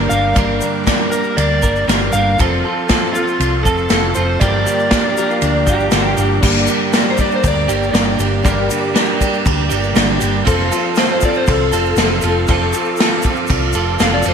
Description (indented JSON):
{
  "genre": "folk rock and heartland rock",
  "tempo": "119 BPM",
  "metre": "4/4",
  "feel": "straight",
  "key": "G minor",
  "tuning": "A4 = 440 Hz",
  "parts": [
    { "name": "dark grand piano", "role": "accompaniment", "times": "0.0-14.3 s", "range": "D4 to D5", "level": "-29 LUFS", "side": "left 5 dB", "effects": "none" },
    { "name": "picked steel-string acoustic guitar", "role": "accompaniment", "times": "0.0-14.3 s", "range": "G2 to Bb4", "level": "-24 LUFS", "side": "left 3 dB", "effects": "slapback echo" },
    { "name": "musette accordion", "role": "sustained chords", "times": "0.0-14.3 s", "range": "G4 to D6", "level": "-28 LUFS", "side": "right 1 dB", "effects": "none" },
    { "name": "clean electric guitar", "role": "riff", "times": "0.0-14.3 s", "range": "G2 to Bb4", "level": "-20 LUFS", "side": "right 6 dB", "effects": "ensemble chorus, slapback echo" },
    { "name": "hollow-body short-scale fingered electric bass", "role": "bass", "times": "0.0-14.3 s", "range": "F1 to D2", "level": "-19 LUFS", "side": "equal", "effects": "none" },
    { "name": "overdriven slide guitar", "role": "melody", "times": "0.1-5.9 s", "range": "F4 to F5", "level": "-20 LUFS", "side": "left 1 dB", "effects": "none" },
    { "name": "egg shaker", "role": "percussion", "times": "0.1-14.3 s", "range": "none", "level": "-32 LUFS", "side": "left 9 dB", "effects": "none" },
    { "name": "unplugged drum kit", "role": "drums", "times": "0.4-14.3 s", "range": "crash cymbal, kick drum, ride cymbal, snare drum", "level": "-17 LUFS", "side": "equal", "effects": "none" },
    { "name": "electric slide guitar", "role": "second line", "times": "5.2-14.3 s", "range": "D4 to F5", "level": "-21 LUFS", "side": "left 3 dB", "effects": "slapback echo" }
  ],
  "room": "moderate lush hall reverb, RT60 1.9 s, studio reverb",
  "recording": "big arena sound",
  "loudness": "-13 LUFS",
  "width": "side -7 dB against mid",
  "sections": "0.0-6.4 A section; 6.4-14.3 B section",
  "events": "electric slide guitar solo 6.4-14.3",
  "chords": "0.0 Gm; 2.4 F; 4.4 Gm7; 6.4 Gm; 10.5 F",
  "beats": "| 0.36 0.87 1.37 1.88 | 2.39 2.89 3.40 3.90 | 4.41 4.91 5.42 5.92 | 6.43 6.93 7.44 7.94 | 8.45 8.95 9.46 9.96 | 10.47 10.97 11.47 11.98 | 12.48 12.99 13.49 14.00"
}